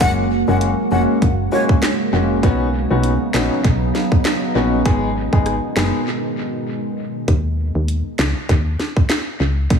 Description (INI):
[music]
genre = dancehall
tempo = 99 BPM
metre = 4/4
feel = swing 56% on 16ths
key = unclear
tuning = A4 = 440 Hz
[part]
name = breathy jazz flute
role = melody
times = 0.0-1.6 s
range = Db5 to Gb5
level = -24 LUFS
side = left 1 dB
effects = tape echo
[part]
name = warm grand piano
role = accompaniment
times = 0.0-6.0 s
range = Ab3 to Ab4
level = -21 LUFS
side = left 4 dB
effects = none
[part]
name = deep dark ambient pad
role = sustained chords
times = 0.0-7.3 s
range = Cb3 to Gb4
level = -22 LUFS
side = right 2 dB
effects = chorus, built-in reverb
[part]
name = solid FM bass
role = bass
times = 0.0-9.8 s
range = F1 to Eb2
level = -19 LUFS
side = equal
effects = none
[part]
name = island pop drum kit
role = drums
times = 0.0-9.8 s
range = handclaps, hi-hat, kick drum, rim click, snare drum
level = -19 LUFS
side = equal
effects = tape echo
[sound]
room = light reverb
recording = echo-heavy mix, small room ambience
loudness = -16 LUFS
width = side -6 dB against mid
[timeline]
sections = 0.0-7.3 A section; 7.3-9.8 B section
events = break 6.1-7.3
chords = 0.0 Gbadd9; 2.4 Badd9; 4.9 Abm; 7.3 Dbsus2